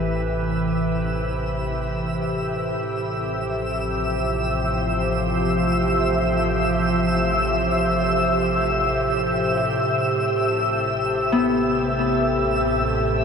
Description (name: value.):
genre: ambient.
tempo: free time.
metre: none.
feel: none.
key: A minor.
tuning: A4 = 440 Hz.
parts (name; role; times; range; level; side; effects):
evolving wavetable pad; sustained chords; 0.0-13.2 s; A2 to C5; -22 LUFS; equal; chorus, built-in reverb.
warm sub bass; bass; 0.0-13.2 s; A1; -30 LUFS; equal; none.
twinkling granular texture; texture; 0.0-13.2 s; E5 to E6; -25 LUFS; equal; built-in reverb.
Celtic harp; arpeggios; 11.3-13.2 s; B3; -23 LUFS; left 5 dB; ping-pong delay.
room: wet shimmer reverb, RT60 8.4 s.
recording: none.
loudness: -19 LUFS.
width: side -6 dB against mid.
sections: 0.0-9.8 A section; 9.8-13.2 B section.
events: fade-in on synth texture 0.0-9.8; filter sweep on ambient pad 0.0-9.8, 9.8-13.2.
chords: 0.0 Am7; 2.8 Fsus2/A; 9.8 Am7.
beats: free time.